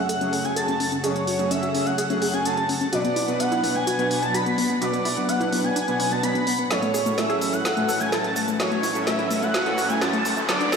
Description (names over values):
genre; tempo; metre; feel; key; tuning
progressive house; 127 BPM; 4/4; straight; unclear; A4 = 442 Hz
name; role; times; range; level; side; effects
expressive portamento lead; melody; 0.0-10.8 s; C#5 to B5; -27 LUFS; equal; wide subtle chorus, tape echo
airy dreamy lead; second line; 0.0-10.8 s; C#6 to B6; -31 LUFS; equal; chorus, tape echo
muted studio string section; sustained chords; 0.0-10.8 s; D2 to F#5; -33 LUFS; left 2 dB; none
analog pluck; arpeggios; 0.0-10.8 s; A3 to A4; -27 LUFS; left 2 dB; chorus, tape echo
deep house drum kit; drums; 0.1-10.8 s; hi-hat, shaker, snare drum; -29 LUFS; equal; none
soft supersaw; stabs; 0.2-10.6 s; A2 to B4; -27 LUFS; right 2 dB; low-pass filter, tape echo
riser; sound effects; 8.4-10.8 s; none; -33 LUFS; right 1 dB; none
room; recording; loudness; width
wet lush hall reverb, RT60 2.6 s; played on a big sound system in a bare room, stone room reverb, high-pass filter; -20 LUFS; side -6 dB against mid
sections
0.0-10.8 A section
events
build-up 0.0-10.8; filter sweep on synth arpeggio sound 0.0-10.8; filter sweep on supersaw synth 0.0-10.8; drum fill 6.7-10.8; riser 8.4-10.8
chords
0.0 F#madd9; 2.9 Bm; 6.7 A6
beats
0.09 0.56 | 1.04 1.51 1.98 2.46 | 2.93 3.40 3.87 4.34 | 4.82 5.29 5.76 6.24 | 6.71 7.18 7.65 8.12 | 8.60 9.07 9.54 10.01 | 10.49